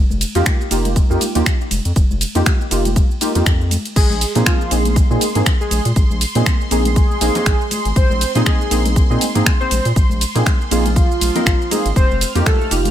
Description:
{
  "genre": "deep house",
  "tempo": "120 BPM",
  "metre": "4/4",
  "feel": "swing 57% on 16ths",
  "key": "unclear",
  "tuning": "A4 = 439 Hz",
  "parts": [
    { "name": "round analog bass", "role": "bass", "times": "0.0-12.9 s", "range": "F1 to Bb2", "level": "-19 LUFS", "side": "equal", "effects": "sidechain pumping" },
    { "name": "house drum kit", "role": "drums", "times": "0.1-12.9 s", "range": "crash cymbal, finger snaps, hi-hat, ride cymbal, shaker", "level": "-22 LUFS", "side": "right 1 dB", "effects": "studio reverb" },
    { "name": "congas", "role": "percussion", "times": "0.1-12.9 s", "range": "none", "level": "-29 LUFS", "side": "left 3 dB", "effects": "none" },
    { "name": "deep mellow chord stab", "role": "stabs", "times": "0.3-12.9 s", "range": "Bb3 to Bb4", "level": "-20 LUFS", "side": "right 1 dB", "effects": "chorus, sidechain pumping, ping-pong delay" },
    { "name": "electronic kick drum", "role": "drums", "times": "0.5-12.6 s", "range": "none", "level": "-15 LUFS", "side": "equal", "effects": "studio reverb" },
    { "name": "warm velvety synth lead", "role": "melody", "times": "4.0-12.7 s", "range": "F4 to C5", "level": "-23 LUFS", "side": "equal", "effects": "chorus, tremolo, digital delay" },
    { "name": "analog string pad", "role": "texture", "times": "4.2-12.9 s", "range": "C6 to F6", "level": "-28 LUFS", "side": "right 1 dB", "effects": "ensemble chorus, phaser" }
  ],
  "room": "digital ambience",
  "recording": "none",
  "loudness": "-14 LUFS",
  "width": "side -11 dB against mid",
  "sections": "0.0-12.9 A section",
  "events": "none",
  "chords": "0.0 F9sus4; 4.0 Bb9sus4; 12.0 F9sus4"
}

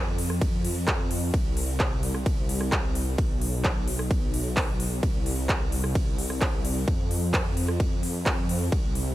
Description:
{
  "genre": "EDM, festival progressive house",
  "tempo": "130 BPM",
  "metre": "4/4",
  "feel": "straight",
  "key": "unclear",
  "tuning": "A4 = 439 Hz",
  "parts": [
    { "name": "wide detuned saw bass", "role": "bass", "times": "0.0-9.1 s", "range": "B1 to F2", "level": "-28 LUFS", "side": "equal", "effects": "chorus, sidechain pumping" },
    { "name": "big-room dance drum kit", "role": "drums", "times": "0.2-9.0 s", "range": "handclaps, hi-hat, ride cymbal, rim click", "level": "-31 LUFS", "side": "equal", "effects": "overdrive" },
    { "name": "electronic kick drum", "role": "drums", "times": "0.4-8.8 s", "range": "none", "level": "-26 LUFS", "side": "equal", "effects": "overdrive" }
  ],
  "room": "digital ambience",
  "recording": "none",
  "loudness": "-24 LUFS",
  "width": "side -15 dB against mid",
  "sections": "0.0-9.1 A section",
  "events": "none",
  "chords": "none"
}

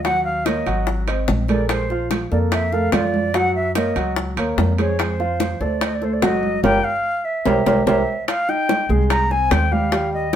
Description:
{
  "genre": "Afro-Cuban jazz",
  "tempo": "146 BPM",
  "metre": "4/4",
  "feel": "straight",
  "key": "unclear",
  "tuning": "A4 = 438 Hz",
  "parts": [
    { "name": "concert flute", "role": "melody", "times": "0.0-10.4 s", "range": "C5 to Bb5", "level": "-22 LUFS", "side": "equal", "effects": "none" },
    { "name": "warm concert grand piano", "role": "accompaniment", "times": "0.0-10.4 s", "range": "F3 to Gb5", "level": "-22 LUFS", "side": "right 2 dB", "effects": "none" },
    { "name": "upright bass", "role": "bass", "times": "0.0-10.4 s", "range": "G1 to Gb2", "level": "-23 LUFS", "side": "equal", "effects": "none" },
    { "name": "bongos", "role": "percussion", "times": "0.0-10.4 s", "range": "none", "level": "-24 LUFS", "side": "left 4 dB", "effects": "none" },
    { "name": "congas", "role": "percussion", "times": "0.0-10.4 s", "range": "none", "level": "-26 LUFS", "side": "right 3 dB", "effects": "none" },
    { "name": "timbales", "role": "percussion", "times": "0.1-10.4 s", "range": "none", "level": "-27 LUFS", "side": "right 2 dB", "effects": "none" }
  ],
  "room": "moderate studio reverb, RT60 0.7 s",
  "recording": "band playing live in one room",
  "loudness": "-17 LUFS",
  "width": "side -10 dB against mid",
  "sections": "0.0-8.3 A section; 8.3-10.4 B section",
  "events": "band accent 6.6-8.3; drum fill 7.7-8.3",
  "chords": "0.0 Ebm7; 0.9 Ab9; 1.7 Bbmaj9; 3.3 Gbadd9; 5.0 Fm; 5.8 D7b9; 6.6 Gm7; 7.5 C7; 8.3 Abmaj13"
}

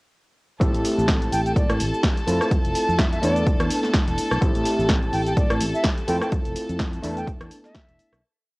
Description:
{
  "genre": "filtered disco house",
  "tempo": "126 BPM",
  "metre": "4/4",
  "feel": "swing 56% on 16ths",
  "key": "A minor",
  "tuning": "A4 = 440 Hz",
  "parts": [
    { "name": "overdriven reed electric piano", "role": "accompaniment", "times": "0.6-8.2 s", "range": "A3 to A4", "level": "-26 LUFS", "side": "equal", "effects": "phaser, sidechain pumping, cassette tape" },
    { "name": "clear chamber violin section", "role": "sustained chords", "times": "0.6-8.2 s", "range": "A4 to A5", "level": "-30 LUFS", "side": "equal", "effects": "sidechain pumping, cassette tape" },
    { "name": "fingered electric bass", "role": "bass", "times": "0.6-8.2 s", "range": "E1 to A2", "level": "-27 LUFS", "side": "equal", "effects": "sidechain pumping" },
    { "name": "electronic kick drum", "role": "drums", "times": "0.6-7.9 s", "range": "none", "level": "-22 LUFS", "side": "equal", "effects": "overdrive, cassette tape" },
    { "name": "punchy analog drum machine", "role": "drums", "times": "0.6-8.2 s", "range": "hi-hat, rim click, shaker, snare drum", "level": "-27 LUFS", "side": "equal", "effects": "overdrive, sidechain pumping on hats, cassette tape, sidechain pumping on perc" },
    { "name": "breathy bright concert flute", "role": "melody", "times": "1.3-8.2 s", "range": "D5 to G5", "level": "-28 LUFS", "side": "equal", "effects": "vintage 12-bit sampler grit, sidechain pumping, cassette tape" }
  ],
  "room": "light reverb",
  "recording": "home recording on cassette",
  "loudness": "-19 LUFS",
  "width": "side -25 dB against mid",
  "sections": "0.6-8.2 drop",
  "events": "drop 0.6-8.2; fade-out 5.7-8.2",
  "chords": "0.6 Am7; 2.3 Fmaj7; 3.2 E7sus4; 4.4 Am7; 6.1 Fmaj7; 7.0 E7sus4"
}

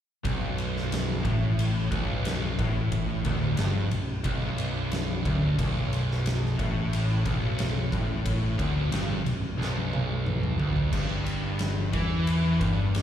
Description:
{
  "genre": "stoner and doom metal",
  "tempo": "90 BPM",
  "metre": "4/4",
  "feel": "straight",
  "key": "B minor",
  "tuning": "A4 = 441 Hz",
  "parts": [
    { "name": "cranked stack guitar", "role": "riff", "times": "0.2-13.0 s", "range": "B1 to E3", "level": "-33 LUFS", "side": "equal", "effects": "overdrive" },
    { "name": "thick fuzz guitar", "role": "riff", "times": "0.2-13.0 s", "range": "B1 to E3", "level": "-31 LUFS", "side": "left 5 dB", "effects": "distortion" },
    { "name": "thick fuzz guitar", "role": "riff", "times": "0.2-13.0 s", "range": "B1 to E3", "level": "-32 LUFS", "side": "right 6 dB", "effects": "distortion" },
    { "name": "oversized low-tuned drum kit", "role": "drums", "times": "0.2-13.0 s", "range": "crash cymbal, kick drum, ride cymbal, snare drum, toms", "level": "-31 LUFS", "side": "equal", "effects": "none" },
    { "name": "picked electric bass", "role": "bass", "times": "0.3-13.0 s", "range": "B0 to E2", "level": "-30 LUFS", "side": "equal", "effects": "tube saturation" }
  ],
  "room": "little or no reverb",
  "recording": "live gig heard through the venue's PA, recital hall reverb",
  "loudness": "-25 LUFS",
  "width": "side -10 dB against mid",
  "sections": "0.2-13.0 A section",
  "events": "drum fill 9.6-10.9",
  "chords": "0.2 Bm; 10.9 G5"
}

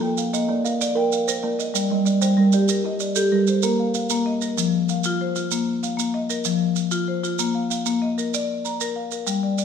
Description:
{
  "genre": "southern african traditional, mbira-style interlocking cycle",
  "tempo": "128 BPM (dotted quarters)",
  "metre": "12/8",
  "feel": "straight",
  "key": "Bb major",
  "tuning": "A4 = 442 Hz",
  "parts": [
    { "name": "kalimba", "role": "arpeggios", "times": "0.0-3.9 s", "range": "G3 to F5", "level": "-22 LUFS", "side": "right 6 dB", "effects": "none" },
    { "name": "marimba with medium hard mallets", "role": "arpeggios", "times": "0.0-9.6 s", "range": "F3 to Bb5", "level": "-22 LUFS", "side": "left 4 dB", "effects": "none" },
    { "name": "maracas", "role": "percussion", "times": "0.2-9.6 s", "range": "none", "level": "-28 LUFS", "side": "right 9 dB", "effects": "none" }
  ],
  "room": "moderate recital hall reverb, RT60 1.4 s",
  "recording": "recorded in a church or concert hall",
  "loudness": "-20 LUFS",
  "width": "side -7 dB against mid",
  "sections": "0.0-3.6 A section; 3.6-9.6 B section",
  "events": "none",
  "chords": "0.0 Bb; 1.7 Gm; 3.6 Bb5; 4.6 F5; 5.5 Bb5; 6.5 F5; 7.4 Bb"
}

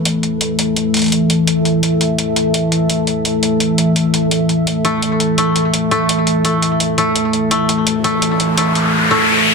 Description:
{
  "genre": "half-time drum and bass",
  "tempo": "169 BPM",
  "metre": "4/4",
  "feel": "swing 56% on 16ths, half-time",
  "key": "unclear",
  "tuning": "A4 = 440 Hz",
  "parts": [
    { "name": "deep dark ambient pad", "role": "sustained chords", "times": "0.0-8.9 s", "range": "E3 to E5", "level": "-15 LUFS", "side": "left 1 dB", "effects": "chorus, built-in reverb" },
    { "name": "koto", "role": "arpeggios", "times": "0.0-1.7, 4.8-9.5 s", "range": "A3", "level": "-17 LUFS", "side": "equal", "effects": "vintage 12-bit sampler grit, ping-pong delay" },
    { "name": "electronic hi-hat", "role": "drums", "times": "0.1-8.8 s", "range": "none", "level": "-19 LUFS", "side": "equal", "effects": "none" },
    { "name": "riser", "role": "sound effects", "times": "8.0-9.5 s", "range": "none", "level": "-16 LUFS", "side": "left 2 dB", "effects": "none" }
  ],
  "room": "wet lush hall reverb, RT60 1.9 s, digital ambience",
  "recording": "dense, heavily limited modern master",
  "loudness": "-13 LUFS",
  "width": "side -4 dB against mid",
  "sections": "0.0-9.5 A section",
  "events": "riser 8.0-9.5",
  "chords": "0.0 A5"
}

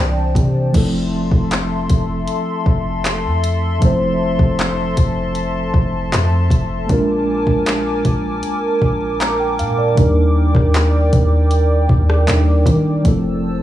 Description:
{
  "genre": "contemporary R&B",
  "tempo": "78 BPM",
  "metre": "4/4",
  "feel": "straight",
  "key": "F major",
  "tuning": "A4 = 440 Hz",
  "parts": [
    { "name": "mellow tine electric piano", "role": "accompaniment", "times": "0.0-13.6 s", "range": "E3 to Bb5", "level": "-20 LUFS", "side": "right 1 dB", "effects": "medium stereo tremolo" },
    { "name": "hollow soft pad", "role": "sustained chords", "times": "0.0-13.6 s", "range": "A4 to E6", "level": "-22 LUFS", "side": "equal", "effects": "chorus, sidechain pumping" },
    { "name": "warm 808-style bass", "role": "bass", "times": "0.0-13.6 s", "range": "F1 to Eb3", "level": "-18 LUFS", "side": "equal", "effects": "none" },
    { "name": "smooth R&B drum kit", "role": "drums", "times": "0.4-13.2 s", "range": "crash cymbal, handclaps, hi-hat, kick drum, rim click", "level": "-17 LUFS", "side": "equal", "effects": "none" }
  ],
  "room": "little or no reverb",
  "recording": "dry, gritty hardware recording, cassette tape, studio reverb",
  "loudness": "-14 LUFS",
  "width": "side -13 dB against mid",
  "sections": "0.7-13.6 A section",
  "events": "none",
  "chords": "0.0 C13; 0.7 Fmaj7; 6.9 Bb7; 10.0 Ebmaj7; 13.0 Fmaj7"
}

